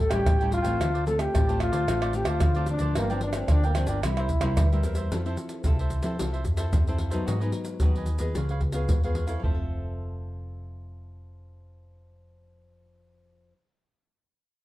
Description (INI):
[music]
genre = samba and choro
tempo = 111 BPM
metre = 4/4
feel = straight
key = F major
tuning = A4 = 441 Hz
[part]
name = warm trombone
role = melody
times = 0.0-4.8 s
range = Bb3 to A4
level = -28 LUFS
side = left 1 dB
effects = none
[part]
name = nylon-string guitar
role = accompaniment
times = 0.0-13.7 s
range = G2 to A4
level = -34 LUFS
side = left 2 dB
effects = none
[part]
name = hollow-body short-scale picked electric bass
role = bass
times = 0.0-13.5 s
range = F1 to F3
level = -29 LUFS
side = equal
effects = none
[part]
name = cavaquinho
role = accompaniment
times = 0.1-13.6 s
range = E4 to G5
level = -38 LUFS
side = right 4 dB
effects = none
[part]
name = maracas, pandeiro, tamborim and surdo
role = percussion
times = 0.1-9.6 s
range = none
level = -26 LUFS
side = equal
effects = none
[sound]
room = light reverb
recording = dark, warm production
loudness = -23 LUFS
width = side -16 dB against mid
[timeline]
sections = 0.0-5.1 A section; 5.1-9.4 B section; 9.4-13.8 C section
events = none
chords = 0.0 A7; 0.8 Dm7; 3.0 Gm7; 4.0 C7; 5.1 Fmaj7; 7.3 Abm7; 8.4 Db7; 9.4 Fmaj7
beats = 0.26 | 0.80 1.34 1.88 2.42 | 2.96 3.50 4.04 4.58 | 5.12 5.66 6.20 6.74 | 7.28 7.82 8.36 8.91 | 9.45 9.99 10.53 11.07 | 11.62 12.16 12.70 13.24